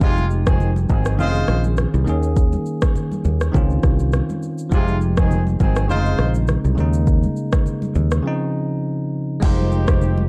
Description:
afrobeats; 102 BPM; 4/4; swing 55% on 16ths; F minor; A4 = 441 Hz
warm horn section; second line; 0.0-10.3 s; C3 to C5; -28 LUFS; equal
bell-like tine electric piano; accompaniment; 0.0-10.3 s; Db3 to C5; -26 LUFS; equal
fingered electric bass; bass; 0.0-10.3 s; F1 to Eb2; -21 LUFS; equal
afro-pop drum kit; drums; 0.0-10.2 s; crash cymbal, kick drum, rim click, shaker; -22 LUFS; equal; vintage 12-bit sampler grit
congas; percussion; 0.2-10.3 s; -31 LUFS; equal
little or no reverb; dark, warm production; -19 LUFS; mono
0.0-9.4 A section
break 8.2-9.4
0.0 Fm9; 1.2 Bbm11/F; 2.1 Eb7sus4; 3.5 Dbmaj9; 4.7 Fm9; 5.9 Bbm11/F; 6.8 Eb7sus4; 8.2 Dbmaj9; 9.4 Fm9
| 0.01 0.60 1.19 1.78 | 2.37 2.95 3.54 4.13 | 4.72 5.31 5.89 6.48 | 7.07 7.66 8.25 8.84 | 9.42 10.01

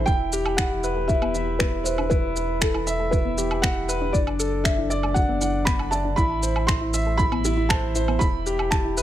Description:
piano and strings electronica; 118 BPM; 4/4; straight; E minor; A4 = 439 Hz
felt-muted upright piano; melody; 0.0-9.0 s; A4 to C6; -28 LUFS; right 1 dB
dark baby grand piano; riff; 0.0-9.0 s; D4 to F#5; -26 LUFS; equal
round analog bass; bass; 0.0-9.0 s; E1 to A1; -28 LUFS; equal; sidechain pumping
soft round pluck; arpeggios; 0.1-9.0 s; B3 to E5; -33 LUFS; left 1 dB; chorus, sidechain pumping, digital delay
electronic kick drum; drums; 0.1-8.8 s; -24 LUFS; equal
electronic shaker, woodblock and finger snaps; drums; 0.1-9.0 s; -28 LUFS; right 1 dB
light reverb, digital ambience; -20 LUFS; side -12 dB against mid
0.0-9.0 A section
0.1 Emadd9; 4.1 D/F#; 6.2 Amadd9; 8.2 Em
| 0.07 0.58 1.09 1.60 | 2.11 2.62 3.13 3.63 | 4.14 4.65 5.16 5.67 | 6.18 6.68 7.19 7.70 | 8.21 8.72

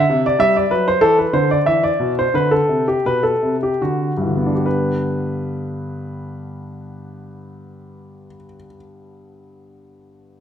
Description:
classical, baroque-style suite movement for grand piano; 69-101 BPM; 3/4; rubato; G major; A4 = 440 Hz
clear grand piano; solo; 0.0-10.4 s; G2 to E5; -16 LUFS; equal
wet recital hall reverb, RT60 1.6 s; -15 LUFS; side -9 dB against mid
0.0-4.6 A section; 4.6-9.8 B section
slowing down 0.0-4.6
0.4 G5; 1.6 E5; 2.3 Am11; 3.8 D; 4.6 G
| 0.41 1.01 1.65 | 2.32 3.02 3.79 | 4.64 5.50 6.35 | 7.21 8.08 8.95

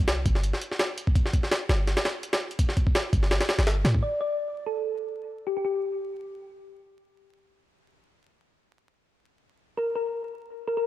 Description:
drum and bass, jungle; 167 BPM; 4/4; swing 55% on 16ths; A4 = 439 Hz
warm 808-style bass; bass; 0.0-4.0 s; G1 to A2; -24 LUFS; equal
jungle sampler-style drum kit; drums; 0.0-4.0 s; hi-hat, kick drum, snare drum; -24 LUFS; equal; overdrive
thumb-piano-like synth pluck; melody; 4.0-6.2, 9.8-10.9 s; G4 to D5; -28 LUFS; left 1 dB; wide subtle chorus, dub echo
light reverb, digital ambience; dry, gritty hardware recording, vinyl crackle; -24 LUFS; side -14 dB against mid
0.0-4.0 A section; 4.0-10.9 B section
0.08 0.44 0.80 | 1.16 1.51 1.87 2.23 | 2.59 2.95 3.31 3.67 | 4.03 4.39 4.75 5.11 | 5.47 5.83 6.18 6.54 | 6.90 7.26 7.62 7.98 | 8.34 8.70 9.06 9.42 | 9.78 10.14 10.50 10.86

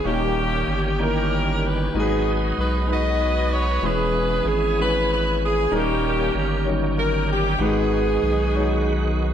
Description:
slow gospel; 64 BPM (dotted quarters); 6/8; straight; G# minor; A4 = 442 Hz
bright saxophone section; melody; 0.0-9.2 s; A#3 to D#5; -23 LUFS; equal
warm concert grand piano; accompaniment; 0.0-9.3 s; G#2 to C#5; -26 LUFS; left 2 dB
bright tonewheel organ; sustained chords; 0.0-9.3 s; D#3 to G#4; -28 LUFS; right 2 dB; fast rotary speaker, overdrive, chorus vibrato
saturated sub bass; bass; 0.0-9.3 s; D#1 to B1; -24 LUFS; equal
moderate recital hall reverb, RT60 1.6 s; -19 LUFS; side -9 dB against mid
0.0-9.3 A section
0.0 D#7; 1.9 G#m7; 3.8 E6; 5.7 D#7; 7.6 G#m7
| 0.05 0.99 | 1.94 2.88 | 3.83 4.77 | 5.72 6.66 | 7.61 8.55

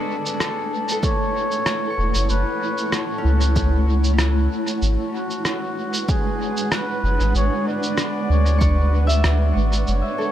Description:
ambient dub; 95 BPM; 4/4; swing 53% on 16ths; A4 = 440 Hz
trumpet with bucket mute; melody; 0.0-10.3 s; F#4 to D5; -26 LUFS; equal; tape echo
granular cloud pad; sustained chords; 0.0-10.3 s; G#3 to F#5; -25 LUFS; right 1 dB; built-in reverb
electronic cabasa and rim click; drums; 0.3-10.0 s; -27 LUFS; equal; dub echo
concert harp; arpeggios; 0.9-10.3 s; C#4 to C#6; -31 LUFS; left 1 dB; tape echo
electronic kick drum; drums; 1.0-8.7 s; -22 LUFS; equal; overdrive
soft dub sub bass; bass; 2.0-10.0 s; E1 to D2; -18 LUFS; equal
light reverb; -18 LUFS; side -11 dB against mid
0.0-10.3 A section
0.0 F#m7; 4.8 G#m7b5
0.40 1.03 1.67 | 2.30 2.93 3.56 4.19 | 4.83 5.46 6.09 6.72 | 7.35 7.98 8.61 9.25 | 9.88

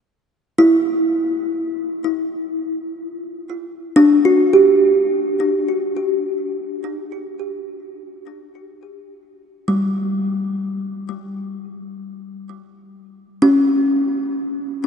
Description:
ambient; free time; A4 = 440 Hz
kalimba; solo; 0.6-14.9 s; G3 to G4; -16 LUFS; equal; ping-pong delay
wet cathedral reverb, RT60 5.1 s; dreamy mix soaked in reverb, nothing above 10.7 kHz; -16 LUFS; side -7 dB against mid
0.0-4.0 A section; 4.0-14.9 B section
0.0 N.C.; 4.0 G5; 11.5 N.C.
free time

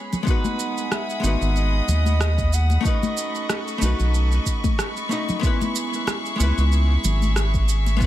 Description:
sunset chillout; 93 BPM; 4/4; swing 55% on 16ths; C# minor; A4 = 440 Hz
archtop guitar, miked and amplified; accompaniment; 0.0-8.1 s; G#3 to D#5; -28 LUFS; moving between left 6 dB and right 2 dB; auto-pan, dub echo
warm studio string section; sustained chords; 0.0-8.1 s; G#4 to D#6; -29 LUFS; left 1 dB
electronic shaker and rim click; drums; 0.1-8.1 s; -29 LUFS; right 3 dB
congas; percussion; 0.1-8.0 s; -30 LUFS; left 3 dB; dub echo
mellow soprano saxophone; melody; 0.3-3.8 s; B4 to F#5; -32 LUFS; right 1 dB; dub echo
electronic kick drum; drums; 0.3-8.1 s; -22 LUFS; equal
round analog bass; bass; 1.2-8.1 s; G#1 to D#2; -19 LUFS; equal; tube saturation
light reverb; echo-heavy mix; -19 LUFS; side -13 dB against mid
0.0-8.1 A section
0.3 G#m7; 2.9 B9; 5.4 C#m7
| 0.27 0.91 1.56 2.21 | 2.85 3.50 4.14 4.79 | 5.43 6.08 6.72 7.37 | 8.01

